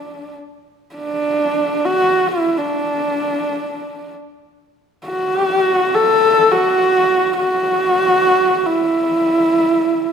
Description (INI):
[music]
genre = mongolian traditional, Mongolian folk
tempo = free time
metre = none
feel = none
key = D gong mode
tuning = A4 = 440 Hz
[part]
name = dark horsehead fiddle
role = solo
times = 0.0-10.1 s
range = D4 to A4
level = -14 LUFS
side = equal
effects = none
[sound]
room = moderate scoring stage reverb, RT60 1.6 s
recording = minimal, uncompressed stereo recording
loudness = -14 LUFS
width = side -7 dB against mid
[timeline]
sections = 0.0-10.1 A section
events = none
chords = none